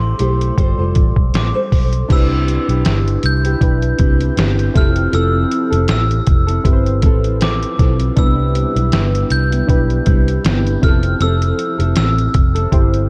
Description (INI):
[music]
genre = indie pop, bedroom pop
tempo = 79 BPM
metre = 4/4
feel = swing 55% on 16ths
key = C major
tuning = A4 = 440 Hz
[part]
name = glockenspiel with hard plastic mallets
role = melody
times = 0.0-13.1 s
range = C6 to G6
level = -26 LUFS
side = equal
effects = analog chorus, diffuse ambient delay
[part]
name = nylon-string guitar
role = accompaniment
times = 0.0-13.1 s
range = C3 to C5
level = -25 LUFS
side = equal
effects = subtle chorus, vibrato effect
[part]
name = vintage muted fingered electric bass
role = bass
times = 0.0-13.1 s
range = F1 to C2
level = -19 LUFS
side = equal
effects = none
[part]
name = lo-fi sampler-style drum kit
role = drums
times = 0.2-13.1 s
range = crash cymbal, hi-hat, kick drum, snare drum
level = -18 LUFS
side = equal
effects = none
[part]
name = warbly lo-fi synth keys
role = accompaniment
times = 2.1-13.1 s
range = C4 to C5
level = -24 LUFS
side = equal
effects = chorus, cassette tape
[sound]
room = light reverb, digital ambience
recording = none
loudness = -15 LUFS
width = mono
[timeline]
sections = 0.0-2.1 A section; 2.1-13.1 B section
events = none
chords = 0.0 Am7; 0.6 G9sus4; 2.1 Cmaj7; 4.8 Fmaj7; 8.2 Cmaj7; 10.8 Fmaj7